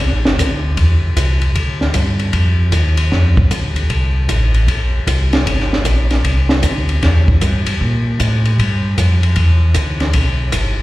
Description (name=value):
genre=soul jazz organ trio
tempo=154 BPM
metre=4/4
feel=swing 65% on 8ths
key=C mixolydian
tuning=A4 = 442 Hz
part: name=mellow tonewheel organ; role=bass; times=0.0-10.8 s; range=G1 to Bb2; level=-14 LUFS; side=equal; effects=slow rotary speaker
part: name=compact cocktail drum kit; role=drums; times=0.0-10.7 s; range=hi-hat, kick drum, ride cymbal, snare drum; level=-18 LUFS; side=equal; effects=none
room=light reverb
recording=live gig heard through the venue's PA, recital hall reverb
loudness=-12 LUFS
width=side -17 dB against mid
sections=0.0-10.8 A section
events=none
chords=none